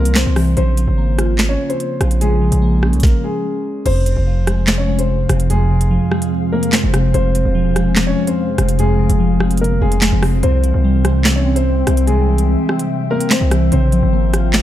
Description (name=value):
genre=hip hop, drill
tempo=146 BPM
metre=4/4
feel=half-time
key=F harmonic minor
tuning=A4 = 441 Hz
part: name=dark grand piano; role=melody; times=0.0-14.6 s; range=Ab3 to Db5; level=-22 LUFS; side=left 2 dB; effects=ping-pong delay
part: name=glassy digital keys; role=accompaniment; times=0.0-14.6 s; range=F2 to F4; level=-18 LUFS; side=left 1 dB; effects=chorus
part: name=distorted 808-style bass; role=bass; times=0.0-14.6 s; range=E1 to C2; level=-16 LUFS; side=right 1 dB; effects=distortion
part: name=drill drum kit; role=drums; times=0.1-14.6 s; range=crash cymbal, handclaps, hi-hat, kick drum, rim click, snare drum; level=-18 LUFS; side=equal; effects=none
part: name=glassy FM pad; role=sustained chords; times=4.8-14.6 s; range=C3 to G5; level=-24 LUFS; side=left 2 dB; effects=ensemble chorus, built-in reverb
room=little or no reverb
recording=dark, warm production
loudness=-13 LUFS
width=side -12 dB against mid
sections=0.0-3.9 A section; 3.9-14.6 B section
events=stop 3.0-3.9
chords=0.0 C; 0.6 Bbm; 3.9 Fm; 10.4 C; 13.7 Bbm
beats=0.16 | 0.57 0.98 1.39 1.80 | 2.21 2.62 3.03 3.44 | 3.86 4.27 4.68 5.09 | 5.50 5.91 6.32 6.73 | 7.14 7.55 7.96 8.38 | 8.79 9.20 9.61 10.02 | 10.43 10.84 11.25 11.66 | 12.07 12.49 12.90 13.31 | 13.72 14.13 14.54